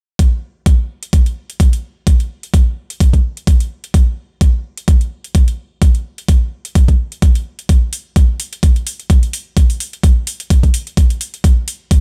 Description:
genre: bass house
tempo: 128 BPM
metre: 4/4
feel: swing 55% on 16ths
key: none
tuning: none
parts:
  - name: electronic hi-hat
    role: drums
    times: 0.2-12.0 s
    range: none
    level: -28 LUFS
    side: equal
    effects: overdrive, studio reverb
  - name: electronic kick drum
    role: drums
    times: 0.2-12.0 s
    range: none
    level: -12 LUFS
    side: equal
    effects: overdrive, studio reverb
room: digital ambience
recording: none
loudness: -15 LUFS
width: mono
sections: 0.2-12.0 A section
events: none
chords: none

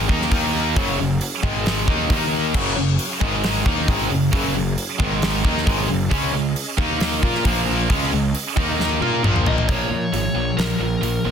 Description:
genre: hard rock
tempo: 134 BPM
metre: 4/4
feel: straight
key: Bb minor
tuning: A4 = 440 Hz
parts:
  - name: bright tonewheel organ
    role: sustained chords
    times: 0.0-9.7 s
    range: Gb3 to F5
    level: -34 LUFS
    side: equal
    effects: none
  - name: overdriven electric guitar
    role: riff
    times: 0.0-11.3 s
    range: Gb2 to Bb4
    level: -25 LUFS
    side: left 13 dB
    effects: harmonic tremolo
  - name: sludgy distorted guitar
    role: riff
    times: 0.0-9.7 s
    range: Gb2 to Bb4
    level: -27 LUFS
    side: equal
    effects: overdrive
  - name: tight distorted guitar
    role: riff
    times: 0.0-11.3 s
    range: Gb2 to Bb4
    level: -25 LUFS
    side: right 10 dB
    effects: distortion
  - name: fuzz picked electric bass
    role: bass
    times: 0.0-11.3 s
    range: Gb1 to Bb2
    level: -25 LUFS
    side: equal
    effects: overdrive
  - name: gated 80s drum kit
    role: drums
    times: 0.1-11.1 s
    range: crash cymbal, hi-hat, kick drum, snare drum, toms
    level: -23 LUFS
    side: equal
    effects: none
  - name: high-gain lead guitar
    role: melody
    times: 9.5-11.3 s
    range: Bb4 to Eb5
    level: -26 LUFS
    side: left 1 dB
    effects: distortion, digital delay
room: small room ambience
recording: dense, heavily limited modern master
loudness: -18 LUFS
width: side -7 dB against mid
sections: 0.0-9.7 A section; 9.7-11.3 B section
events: drum fill 8.8-9.7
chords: 0.1 Gb5; 0.3 Eb5; 0.8 Gb5; 1.4 Ab5; 1.9 Gb5; 2.1 Eb5; 2.5 Gb5; 3.2 Ab5; 3.7 Gb5; 5.0 Ab5; 5.4 Gb5; 6.1 Db5; 6.8 Eb5; 7.2 Db5; 7.5 Bb5; 7.9 Db5; 8.6 Eb5; 9.0 Db5; 9.2 Bb5; 9.7 Bbm

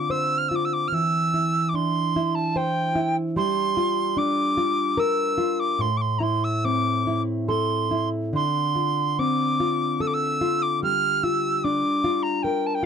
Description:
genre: celtic folk, Celtic slow air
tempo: 73 BPM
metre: 3/4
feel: uneven beats, rubato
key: D minor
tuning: A4 = 438 Hz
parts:
  - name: bright reedy mid whistle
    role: melody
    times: 0.0-12.9 s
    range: G5 to F6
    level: -24 LUFS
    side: right 2 dB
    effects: none
  - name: nylon-string guitar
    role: accompaniment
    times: 0.0-12.9 s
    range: A2 to C5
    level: -24 LUFS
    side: left 1 dB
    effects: none
room: light reverb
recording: dry, close 1970s-style studio recording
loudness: -21 LUFS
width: side -7 dB against mid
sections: 0.0-12.9 A section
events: none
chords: 0.0 Dm7; 0.9 Cadd9/E; 3.4 Gm7; 5.8 Am; 8.3 Dm7; 10.8 Gm7

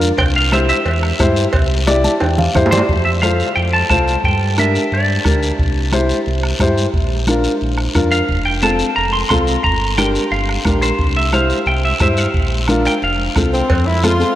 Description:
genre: latin, cumbia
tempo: 178 BPM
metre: 4/4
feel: straight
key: F major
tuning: A4 = 440 Hz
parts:
  - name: dark upright piano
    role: accompaniment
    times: 0.0-14.4 s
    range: C4 to A5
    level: -18 LUFS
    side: left 1 dB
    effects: none
  - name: sub bass with octave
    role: bass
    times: 0.0-14.2 s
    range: F1 to G2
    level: -18 LUFS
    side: equal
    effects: none
  - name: guiro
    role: percussion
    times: 0.0-14.4 s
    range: none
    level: -27 LUFS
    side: left 3 dB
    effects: none
  - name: semi-hollow electric guitar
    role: second line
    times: 0.2-5.4, 8.1-13.5 s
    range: C5 to C6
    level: -19 LUFS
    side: equal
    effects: none
  - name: bombo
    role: percussion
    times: 0.2-14.2 s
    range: none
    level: -21 LUFS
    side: right 1 dB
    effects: none
  - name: congas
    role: percussion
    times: 0.2-14.2 s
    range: none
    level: -25 LUFS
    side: right 1 dB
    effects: none
  - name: cowbell and timbales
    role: percussion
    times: 0.2-2.9, 13.7-13.9 s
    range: none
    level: -26 LUFS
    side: right 3 dB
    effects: none
  - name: mellow saxophone section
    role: melody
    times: 13.5-14.4 s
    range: C4 to F4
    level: -17 LUFS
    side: left 1 dB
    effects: none
room: wet cathedral reverb, RT60 5.5 s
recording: in a vast, echoing space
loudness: -13 LUFS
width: side -13 dB against mid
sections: 0.0-2.9 A section; 2.9-13.7 B section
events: clean electric guitar solo 0.0-2.9, 2.9-13.7; drum fill 1.9-2.9; upright piano fill 1.9-2.9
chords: 0.2 C; 2.9 F; 4.2 Gm; 5.6 C; 6.9 Bb; 8.3 F; 9.6 Gm; 11.0 C; 12.3 Bb; 13.0 F

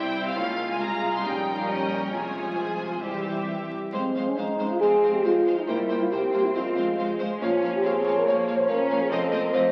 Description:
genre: quick classical-period movement for symphony orchestra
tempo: 130-143 BPM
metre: 4/4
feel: rubato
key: F minor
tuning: A4 = 440 Hz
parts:
  - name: clear studio violin section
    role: melody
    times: 0.0-9.6 s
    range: C5 to C6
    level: -37 LUFS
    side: equal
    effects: none
  - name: rich studio violin section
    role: second line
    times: 0.0-9.6 s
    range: E4 to Ab5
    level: -36 LUFS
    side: equal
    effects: none
  - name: rich studio viola section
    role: accompaniment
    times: 0.0-9.6 s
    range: E3 to G4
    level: -36 LUFS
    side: equal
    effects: none
  - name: mellow French horn section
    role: sustained chords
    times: 0.0-9.7 s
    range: G3 to Db5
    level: -28 LUFS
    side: equal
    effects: none
  - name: rich studio cello section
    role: bass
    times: 0.0-9.7 s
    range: Bb2 to Db4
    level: -38 LUFS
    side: equal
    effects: none
  - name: rich studio double bass section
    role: bass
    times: 0.0-9.6 s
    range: F1 to F2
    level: -42 LUFS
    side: equal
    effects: none
  - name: mellow hollow silver concert flute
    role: second line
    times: 3.9-9.7 s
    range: C5 to Eb5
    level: -34 LUFS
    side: equal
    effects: none
  - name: dark bassoon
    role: accompaniment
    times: 3.9-9.7 s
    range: F3 to Bb3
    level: -34 LUFS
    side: equal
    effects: none
room: wet scoring stage reverb, RT60 1.8 s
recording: very old 78 rpm record, vinyl crackle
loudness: -25 LUFS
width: mono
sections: 0.0-3.9 A section; 3.9-9.7 B section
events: none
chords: 0.4 Db; 1.2 Gdim/Bb; 2.1 Fm/C; 3.0 C; 3.9 Fm; 5.7 C5; 6.5 Fm; 7.4 Bbm; 9.1 F7

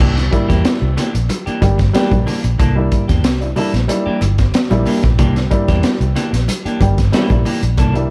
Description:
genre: funk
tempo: 92 BPM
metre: 4/4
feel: straight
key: C mixolydian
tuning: A4 = 440 Hz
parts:
  - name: clean electric guitar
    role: accompaniment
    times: 0.0-8.0 s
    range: E3 to A4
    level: -25 LUFS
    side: equal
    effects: none
  - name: vintage muted fingered electric bass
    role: bass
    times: 0.0-8.1 s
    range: G1 to E2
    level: -18 LUFS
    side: equal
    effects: none
  - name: crunchy breakbeat drum kit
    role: drums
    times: 0.0-8.1 s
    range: crash cymbal, hi-hat, kick drum, snare drum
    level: -20 LUFS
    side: equal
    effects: none
  - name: congas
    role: percussion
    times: 0.0-7.9 s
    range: none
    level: -28 LUFS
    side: equal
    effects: none
  - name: dark upright piano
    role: stabs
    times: 0.3-8.1 s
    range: G3 to G4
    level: -23 LUFS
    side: equal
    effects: none
room: light reverb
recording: dark, warm production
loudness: -15 LUFS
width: mono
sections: 0.0-8.1 A section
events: none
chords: 0.0 C9

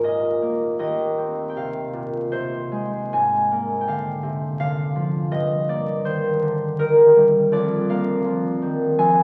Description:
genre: classical, solo harp piece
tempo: 82 BPM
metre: 3/4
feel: rubato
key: Eb major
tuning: A4 = 440 Hz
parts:
  - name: concert harp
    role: solo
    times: 0.0-9.2 s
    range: Eb2 to Ab5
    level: -21 LUFS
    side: equal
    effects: none
room: wet recital hall reverb, RT60 1.8 s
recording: very old 78 rpm record, vinyl crackle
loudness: -21 LUFS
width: mono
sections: 0.0-9.2 A section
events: none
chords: 0.0 Eb5; 0.8 Fm/Eb; 3.1 Bb7/Ab; 5.3 Eb/G; 7.5 Bb7/F

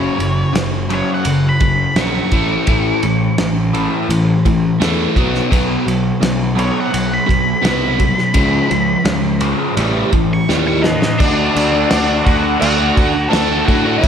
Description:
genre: classic rock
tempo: 84 BPM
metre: 4/4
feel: straight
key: unclear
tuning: A4 = 442 Hz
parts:
  - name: octave-fuzz lead guitar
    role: melody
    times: 0.0-14.1 s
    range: D4 to D6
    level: -20 LUFS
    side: equal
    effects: distortion, slapback echo
  - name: overdriven electric guitar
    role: riff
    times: 0.0-14.1 s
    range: F#2 to F#4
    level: -16 LUFS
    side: left 1 dB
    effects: phaser, slapback echo
  - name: fuzz picked electric bass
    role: bass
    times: 0.0-14.1 s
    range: F#1 to A2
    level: -20 LUFS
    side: equal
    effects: overdrive
  - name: cloth-damped thuddy drum kit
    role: drums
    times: 0.2-14.1 s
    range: crash cymbal, kick drum, ride cymbal, snare drum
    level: -19 LUFS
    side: equal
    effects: none
room: moderate lush hall reverb, RT60 1.9 s, studio reverb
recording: big arena sound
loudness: -13 LUFS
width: side -8 dB against mid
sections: 0.0-11.2 A section; 11.2-14.1 B section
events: lead electric guitar solo 0.0-11.2; drum fill 10.5-11.2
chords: 0.0 F#5; 2.3 A; 5.2 B5; 8.4 C#; 9.8 A5; 11.2 D

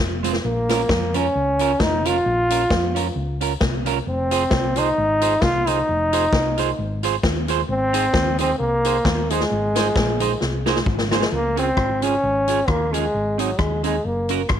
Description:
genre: ska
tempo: 132 BPM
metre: 4/4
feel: swing 56% on 8ths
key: Db major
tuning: A4 = 440 Hz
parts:
  - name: hollow-body short-scale fingered electric bass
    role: bass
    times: 0.0-14.6 s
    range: F1 to F2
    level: -26 LUFS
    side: left 1 dB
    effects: none
  - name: clean electric guitar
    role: accompaniment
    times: 0.2-14.4 s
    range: Ab3 to C5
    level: -26 LUFS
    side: right 15 dB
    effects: none
  - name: swinging big-band drum kit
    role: drums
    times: 0.2-14.6 s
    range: hi-hat, kick drum, rim click, snare drum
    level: -24 LUFS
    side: left 2 dB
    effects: none
  - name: tambourine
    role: percussion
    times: 0.3-11.2 s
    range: none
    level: -38 LUFS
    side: left 17 dB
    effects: none
  - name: clear trombone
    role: melody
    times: 0.4-14.5 s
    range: Gb3 to F4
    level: -21 LUFS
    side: equal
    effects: none
room: light reverb, small room ambience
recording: 1960s-style stereo with parts hard left and right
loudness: -18 LUFS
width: side -9 dB against mid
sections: 0.0-11.3 A section; 11.3-14.6 B section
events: drum fill 10.4-11.3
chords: 0.4 Bbm; 4.1 Fm; 7.7 Ab; 11.3 Db; 13.1 Ab; 14.0 Gb

